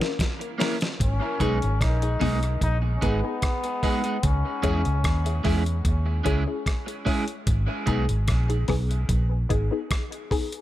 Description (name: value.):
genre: dub reggae.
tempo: 74 BPM.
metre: 4/4.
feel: straight.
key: G# minor.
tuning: A4 = 445 Hz.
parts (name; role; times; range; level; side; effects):
filtered dub chord stab; stabs; 0.0-10.5 s; B3 to A#4; -32 LUFS; left 4 dB; phaser, dub echo.
dusty soul sampler-style drum kit; drums; 0.0-10.6 s; hi-hat, kick drum, rim click, snare drum; -26 LUFS; equal; none.
electric guitar at the edge of break-up; accompaniment; 0.4-8.0 s; G#3 to A#4; -31 LUFS; right 3 dB; wide subtle chorus, dub echo.
bright trombone; melody; 1.0-5.9 s; B3 to D#4; -32 LUFS; left 3 dB; dub echo.
vintage muted fingered electric bass; bass; 1.0-9.7 s; G#1 to E2; -24 LUFS; equal; none.
room: light reverb, digital ambience.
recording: echo-heavy mix.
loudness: -22 LUFS.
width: side -14 dB against mid.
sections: 0.0-10.6 A section.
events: drum fill 0.0-1.0.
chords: 0.0 A#dim; 1.0 G#m; 4.2 C#m; 7.5 G#m.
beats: 0.19 | 1.00 1.81 2.62 3.42 | 4.24 5.04 5.86 6.66 | 7.47 8.28 9.09 9.90.